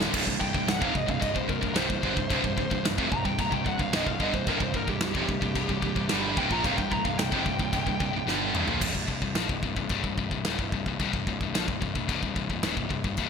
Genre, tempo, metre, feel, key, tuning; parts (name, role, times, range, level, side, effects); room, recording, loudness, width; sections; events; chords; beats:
heavy metal; 110 BPM; 4/4; straight; A4 = 440 Hz
high-gain distorted guitar; riff; 0.0-8.8 s; C2 to G3; -31 LUFS; right 12 dB; distortion
scooped high-gain guitar; riff; 0.0-13.3 s; C2 to G3; -30 LUFS; left 10 dB; distortion
fuzz picked electric bass; bass; 0.0-13.3 s; C1 to Bb1; -34 LUFS; equal; overdrive
big rock drum kit; drums; 0.0-13.3 s; china cymbal, crash cymbal, kick drum, snare drum, toms; -30 LUFS; equal
bluesy overdriven lead guitar; melody; 0.4-8.2 s; G4 to Bb5; -32 LUFS; equal; distortion
light reverb; bright 1980s-style digital production; -25 LUFS; side -6 dB against mid
0.1-8.8 A section; 8.8-13.3 B section
lead electric guitar solo 0.1-8.8; drum fill 8.3-8.8
0.1 C5
| 0.14 0.68 1.22 1.76 | 2.31 2.85 3.39 3.93 | 4.48 5.02 5.56 6.11 | 6.65 7.19 7.73 8.28 | 8.82 9.37 9.91 10.45 | 11.00 11.54 12.09 12.63 | 13.18